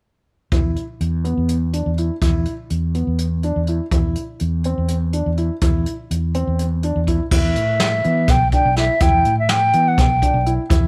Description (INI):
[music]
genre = progressive instrumental, band music in an uneven meter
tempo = 248 BPM (eighths)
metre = 7/8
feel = straight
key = E minor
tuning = A4 = 440 Hz
[part]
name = dark grand piano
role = arpeggios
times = 0.5-10.9 s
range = B3 to E4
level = -28 LUFS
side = equal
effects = none
[part]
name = fretless electric bass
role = bass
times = 0.5-10.9 s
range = B1 to E3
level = -22 LUFS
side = equal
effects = none
[part]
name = jazz brush drum kit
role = drums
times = 0.5-10.8 s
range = crash cymbal, hi-hat, kick drum, snare drum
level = -22 LUFS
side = equal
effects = none
[part]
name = mellow wooden flute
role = melody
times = 7.3-10.5 s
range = E5 to G5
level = -20 LUFS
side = equal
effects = none
[sound]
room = light reverb, small room ambience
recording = none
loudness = -19 LUFS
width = mono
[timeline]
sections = 0.5-7.3 A section; 7.3-10.9 B section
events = none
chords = 0.5 E5; 3.9 C/E; 7.3 Em